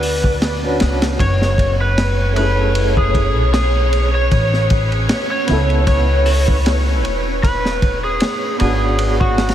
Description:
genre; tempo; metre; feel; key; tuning
trip hop; 77 BPM; 4/4; swing 55% on 16ths; F# minor; A4 = 436 Hz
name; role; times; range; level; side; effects
overdriven slide guitar; melody; 0.0-9.5 s; F#4 to C#5; -21 LUFS; equal; tape echo
felt-muted upright piano; accompaniment; 0.0-9.5 s; A3 to B4; -24 LUFS; right 1 dB; tremolo, tape echo
upright bass; bass; 0.0-9.5 s; E1 to D2; -17 LUFS; equal; none
crunchy breakbeat drum kit; drums; 0.0-9.5 s; hi-hat, kick drum, ride cymbal, snare drum; -20 LUFS; equal; none
string machine, cellos; sustained chords; 1.2-9.5 s; C#5; -24 LUFS; equal; phaser, ensemble chorus
bowed-like drone; texture; 3.3-9.5 s; B4; -31 LUFS; left 2 dB; built-in reverb
room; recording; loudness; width
moderate huge ambient reverb, RT60 4.1 s; dreamy mix soaked in reverb; -14 LUFS; side -11 dB against mid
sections
0.0-9.5 A section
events
none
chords
0.0 Bm; 1.2 F#m7; 4.3 A; 7.4 E7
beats
0.42 | 1.20 1.98 2.76 3.54 | 4.31 5.09 5.87 6.65 | 7.43 8.21 8.99

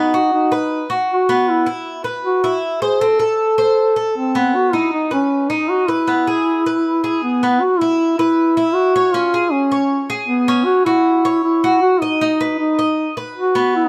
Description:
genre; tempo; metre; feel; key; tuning
latin; 156 BPM; 4/4; straight; E major; A4 = 441 Hz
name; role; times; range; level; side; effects
dark duduk; melody; 0.0-13.9 s; B3 to A4; -18 LUFS; equal; none
Cuban tres; arpeggios; 0.0-13.9 s; B3 to D#5; -22 LUFS; equal; none
room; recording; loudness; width
light reverb; none; -17 LUFS; mono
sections
0.0-7.6 A section; 7.6-13.9 A section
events
none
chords
0.0 B; 1.5 E5; 3.0 Am; 4.5 B; 6.1 E; 7.6 E5; 9.1 C#; 10.7 F#5; 12.2 B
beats
0.33 0.71 1.09 | 1.48 1.86 2.25 2.63 | 3.01 3.40 3.78 4.16 | 4.55 4.93 5.31 5.70 | 6.08 6.46 6.85 7.23 | 7.61 8.00 8.38 8.76 | 9.15 9.53 9.91 10.30 | 10.68 11.06 11.45 11.83 | 12.21 12.60 12.98 13.37 | 13.75

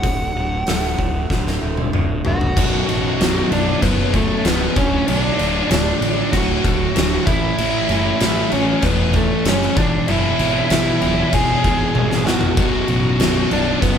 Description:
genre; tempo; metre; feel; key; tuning
quiet-loud alternative rock; 96 BPM; 4/4; straight; B dorian; A4 = 441 Hz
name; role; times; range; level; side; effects
fuzz lead guitar; melody; 0.0-14.0 s; A3 to G#5; -22 LUFS; right 1 dB; distortion
electric guitar through a small old amp; arpeggios; 0.0-2.6 s; D2 to A3; -28 LUFS; right 1 dB; phaser
fuzz fingered electric bass; bass; 0.0-14.0 s; B0 to B1; -23 LUFS; equal; overdrive
oversized low-tuned drum kit; drums; 0.0-14.0 s; crash cymbal, hi-hat, kick drum, snare drum, toms; -19 LUFS; equal; none
fuzz guitar; riff; 2.6-14.0 s; B1 to A3; -20 LUFS; left 1 dB; distortion
room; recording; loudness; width
light reverb; band playing live in one room; -15 LUFS; side -8 dB against mid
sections
0.0-2.6 A section; 2.6-14.0 B section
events
drum fill 1.3-2.6, 12.0-12.6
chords
0.0 D; 2.6 Bm; 4.8 D; 7.3 A; 9.8 E; 12.6 Bm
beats
| 0.04 0.67 1.30 1.93 | 2.56 3.19 3.82 4.45 | 5.08 5.70 6.33 6.96 | 7.58 8.21 8.83 9.46 | 10.08 10.71 11.33 11.95 | 12.58 13.20 13.82

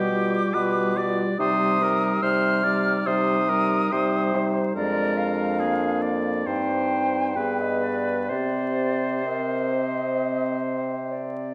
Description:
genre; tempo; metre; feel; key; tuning
classical, slow romantic movement for wind quintet; 62-72 BPM; 4/4; rubato; C minor; A4 = 440 Hz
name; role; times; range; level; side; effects
concert flute; melody; 0.0-11.1 s; C5 to F6; -29 LUFS; equal; none
clear oboe; second line; 0.0-11.5 s; G4 to D5; -32 LUFS; equal; none
mellow French horn; accompaniment; 0.0-11.5 s; G3 to C4; -31 LUFS; equal; none
clear bassoon; bass; 0.0-11.5 s; F2 to C3; -30 LUFS; equal; none
dark clarinet; accompaniment; 0.1-11.5 s; D4 to D5; -33 LUFS; equal; none
room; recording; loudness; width
wet scoring stage reverb, RT60 1.7 s; vinyl crackle; -24 LUFS; mono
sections
0.0-11.5 A section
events
none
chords
0.0 G7/B; 1.4 Cm; 4.8 Ddim/F; 6.5 Cm/G; 7.4 G; 8.3 Cm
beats
0.54 | 1.39 2.22 3.06 3.92 | 4.76 5.59 6.46 7.36 | 8.29 9.25 10.20 11.12

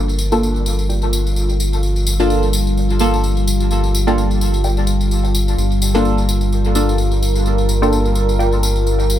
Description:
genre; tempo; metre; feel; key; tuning
dub techno; 128 BPM; 4/4; swing 56% on 16ths; G minor; A4 = 440 Hz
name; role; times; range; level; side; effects
deep dark ambient pad; sustained chords; 0.0-9.2 s; G3 to Bb4; -22 LUFS; left 1 dB; chorus, built-in reverb
round analog bass; bass; 0.0-9.2 s; G1; -17 LUFS; equal; none
tambourine; percussion; 0.1-9.2 s; none; -26 LUFS; left 2 dB; dub echo
filtered dub chord stab; riff; 0.3-8.5 s; F4 to G5; -28 LUFS; left 2 dB; phaser, wide subtle chorus, dub echo
deep mellow chord stab; stabs; 0.3-8.0 s; Bb3 to A4; -21 LUFS; equal; chorus, phaser, cassette tape, dub echo
room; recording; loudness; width
light reverb, digital ambience; echo-heavy mix; -14 LUFS; side -11 dB against mid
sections
0.0-9.2 A section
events
none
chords
0.0 Gm7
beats
0.42 0.89 1.36 | 1.83 2.30 2.77 3.24 | 3.71 4.17 4.64 5.11 | 5.58 6.05 6.52 6.99 | 7.46 7.92 8.39 8.86

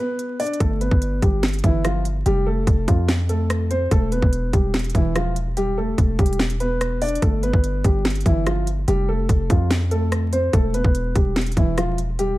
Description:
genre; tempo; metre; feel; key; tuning
hip hop, trap; 145 BPM; 4/4; half-time; E phrygian; A4 = 440 Hz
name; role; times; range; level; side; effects
dark concert grand piano; melody; 0.0-12.4 s; E3 to D5; -24 LUFS; equal; none
trap drum kit; drums; 0.2-12.3 s; hi-hat, kick drum, rim click, snare drum; -20 LUFS; equal; none
hard-hitting 808-style bass; bass; 0.6-12.4 s; E1 to F2; -22 LUFS; equal; none
room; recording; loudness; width
little or no reverb; vinyl crackle; -18 LUFS; side -17 dB against mid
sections
0.6-12.4 A section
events
break 0.0-0.6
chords
0.0 N.C.; 0.6 G; 2.3 Fadd9; 3.9 Em; 7.2 G; 8.9 Fadd9; 10.5 Em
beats
0.19 | 0.60 1.02 1.43 1.84 | 2.26 2.67 3.09 3.50 | 3.91 4.33 4.74 5.16 | 5.57 5.98 6.40 6.81 | 7.22 7.64 8.05 8.46 | 8.88 9.29 9.71 10.12 | 10.53 10.95 11.36 11.78 | 12.19

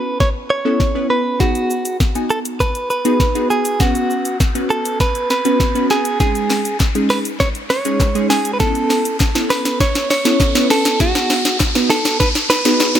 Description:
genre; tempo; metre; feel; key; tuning
dance-pop; 100 BPM; 4/4; straight; unclear; A4 = 440 Hz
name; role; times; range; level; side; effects
direct-recorded clean electric guitar; melody; 0.0-13.0 s; F#4 to C#5; -19 LUFS; right 2 dB; tremolo, digital delay
glassy wavetable pluck; accompaniment; 0.0-13.0 s; G#3 to G#5; -20 LUFS; equal; chorus, sidechain pumping
riser; sound effects; 0.3-13.0 s; none; -26 LUFS; equal; none
smooth R&B drum kit; drums; 0.2-13.0 s; hi-hat, kick drum, shaker, snare drum; -18 LUFS; left 1 dB; none
group handclap; percussion; 6.5-12.9 s; none; -30 LUFS; left 3 dB; none
room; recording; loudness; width
light reverb; none; -14 LUFS; side -10 dB against mid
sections
0.0-13.0 A section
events
build-up 0.0-13.0; drum fill 0.0-13.0; riser 0.3-13.0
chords
0.0 Aadd9; 1.4 G#m7; 3.8 Bsus2; 6.2 C#sus2; 8.6 Aadd9; 11.0 G#m7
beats
0.20 0.80 | 1.40 2.00 2.60 3.20 | 3.80 4.40 5.00 5.60 | 6.20 6.80 7.40 8.00 | 8.60 9.20 9.80 10.40 | 11.00 11.60 12.20 12.80

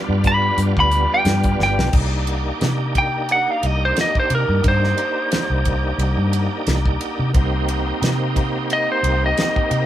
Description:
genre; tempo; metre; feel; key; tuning
straight-eighth soul blues; 89 BPM; 4/4; swing 55% on 16ths; C minor; A4 = 440 Hz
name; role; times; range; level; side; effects
bright tonewheel organ; accompaniment; 0.0-9.9 s; G3 to G4; -24 LUFS; right 2 dB; slow rotary speaker, overdrive, chorus vibrato
vintage muted fingered electric bass; bass; 0.1-9.9 s; G1 to C3; -20 LUFS; equal; none
damped 70s drum kit; drums; 0.2-9.9 s; crash cymbal, hi-hat, kick drum, ride cymbal, snare drum; -22 LUFS; equal; none
lightly driven lead guitar; melody; 0.3-9.9 s; Bb4 to B5; -20 LUFS; equal; none
room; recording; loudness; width
moderate studio reverb, RT60 0.6 s; band playing live in one room; -16 LUFS; side -12 dB against mid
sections
0.0-1.9 A section; 1.9-9.9 A section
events
lead electric guitar solo 0.0-1.9, 1.9-9.9; drum fill 1.6-1.9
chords
0.0 G7; 1.9 Cm7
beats
0.58 1.26 | 1.94 2.61 3.29 3.97 | 4.64 5.32 6.00 6.67 | 7.35 8.03 8.70 9.38

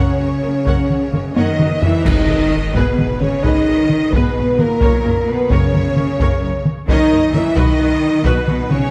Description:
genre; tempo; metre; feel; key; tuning
cinematic, epic orchestral film score; 87 BPM (dotted quarters); 12/8; straight; G# minor; A4 = 440 Hz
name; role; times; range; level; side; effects
warm symphonic violin section; melody; 0.0-8.9 s; A#4 to F#5; -32 LUFS; equal; none
warm symphonic violin section; second line; 0.0-8.9 s; A#4 to E5; -27 LUFS; equal; none
rich symphonic viola section; accompaniment; 0.0-8.8 s; F#4 to C#5; -29 LUFS; equal; none
mellow French horn section; sustained chords; 0.0-8.9 s; A#3 to E4; -20 LUFS; equal; none
rich symphonic cello section; bass; 0.0-8.9 s; A#2 to E3; -25 LUFS; equal; none
rich symphonic double bass section; bass; 0.0-8.8 s; F#1 to B1; -25 LUFS; equal; none
solo taiko drums; drums; 0.7-8.9 s; none; -21 LUFS; equal; none
clash cymbals and concert bass drum; percussion; 2.1-2.9 s; none; -29 LUFS; equal; none
timpani; percussion; 2.1-2.7 s; G#2; -28 LUFS; equal; none
impact; sound effects; 2.3-4.8 s; none; barely audible; none; none
room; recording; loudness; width
moderate concert hall reverb, RT60 2.4 s; dark, warm production; -16 LUFS; mono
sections
0.0-2.1 A section; 2.1-8.9 B section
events
drum fill 1.4-2.1; band accent 2.1-2.5; impact 2.1-4.8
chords
0.0 F#; 2.1 G#m; 4.8 F#7; 7.6 B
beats
0.66 1.37 | 2.07 2.76 3.45 4.14 | 4.83 5.51 6.20 6.89 | 7.57 8.25

